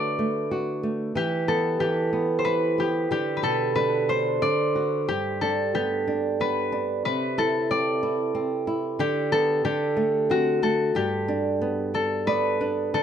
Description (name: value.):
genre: children's music, lullaby.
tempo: 92 BPM.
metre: 3/4.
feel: straight.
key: G major.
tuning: A4 = 442 Hz.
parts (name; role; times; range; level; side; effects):
concert harp; melody; 0.0-13.0 s; F#4 to D5; -24 LUFS; equal; none.
flamenco guitar; accompaniment; 0.0-13.0 s; G2 to D5; -26 LUFS; right 1 dB; none.
room: moderate studio reverb, RT60 0.6 s.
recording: dark, warm production.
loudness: -22 LUFS.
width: side -8 dB against mid.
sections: 0.0-12.9 A section.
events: nylon-string guitar fill 11.9-12.9.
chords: 0.0 D; 1.2 E5; 3.1 Bm7; 4.4 D; 5.1 G; 7.1 C; 9.0 G/D; 9.7 D5; 11.0 G.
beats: 0.52 | 1.16 1.81 2.46 | 3.11 3.77 4.43 | 5.09 5.75 6.41 | 7.06 7.71 8.36 | 9.01 9.65 10.30 | 10.96 11.61 12.28 | 12.94.